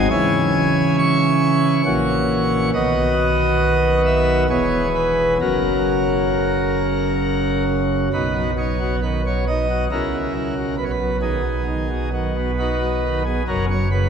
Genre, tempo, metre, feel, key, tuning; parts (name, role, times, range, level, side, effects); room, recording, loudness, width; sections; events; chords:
classical, chorale-style piece for pipe organ; 68 BPM; 3/4; rubato; B major; A4 = 440 Hz
pipe organ, principal chorus; solo; 0.0-14.1 s; E1 to C#6; -17 LUFS; equal
wet church reverb, RT60 3.8 s; minimal, uncompressed stereo recording; -17 LUFS; side -7 dB against mid
0.0-8.1 A section; 8.1-14.1 B section
0.1 C#m; 1.9 F#7/A#; 2.7 B; 4.5 E; 5.4 F#; 8.1 B; 9.9 F#7/C#; 10.8 B; 13.5 F#